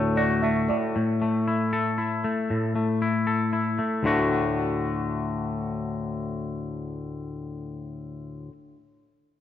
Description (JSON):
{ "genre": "rock", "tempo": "116 BPM", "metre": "3/4", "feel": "straight", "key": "D major", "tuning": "A4 = 444 Hz", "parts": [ { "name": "felt-muted upright piano", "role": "arpeggios", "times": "0.0-0.9 s", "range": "C#5 to E5", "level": "-30 LUFS", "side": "right 8 dB", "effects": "tape echo" }, { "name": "twangy electric guitar", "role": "arpeggios", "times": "0.0-8.5 s", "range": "D2 to A4", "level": "-24 LUFS", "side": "left 2 dB", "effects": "tape echo" } ], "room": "wet recital hall reverb, RT60 1.6 s, small room ambience", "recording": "nothing above 7.8 kHz", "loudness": "-24 LUFS", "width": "side -10 dB against mid", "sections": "0.0-4.0 A section; 4.0-7.1 B section", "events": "none", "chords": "0.0 D; 0.9 A5; 4.0 D", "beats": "0.42 | 0.93 1.45 1.97 | 2.49 3.00 3.52 | 4.04 4.56 5.07 | 5.59 6.11 6.62" }